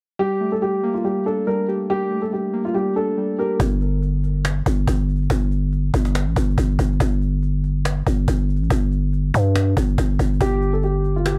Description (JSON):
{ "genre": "hip hop, trap", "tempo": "141 BPM", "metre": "4/4", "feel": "half-time", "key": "G minor", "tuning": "A4 = 436 Hz", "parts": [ { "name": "dark concert grand piano", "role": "melody", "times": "0.2-3.6, 10.4-11.4 s", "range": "F4 to Bb4", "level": "-25 LUFS", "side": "equal", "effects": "low-pass filter, analog delay" }, { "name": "muted felt-like synth keys", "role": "accompaniment", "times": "0.2-3.6 s", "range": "G3 to G4", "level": "-26 LUFS", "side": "equal", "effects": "chorus" }, { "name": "growling 808-style bass", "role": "bass", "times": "3.6-11.4 s", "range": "G1 to G2", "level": "-21 LUFS", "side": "equal", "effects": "none" }, { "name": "cajon", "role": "drums", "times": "3.6-11.4 s", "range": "none", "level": "-28 LUFS", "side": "equal", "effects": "none" } ], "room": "little or no reverb", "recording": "dry, gritty hardware recording", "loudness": "-21 LUFS", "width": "mono", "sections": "0.2-3.6 A section; 3.6-11.4 B section", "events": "filter sweep on grand piano 3.6-10.4", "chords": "0.2 Gmadd9; 3.6 N.C." }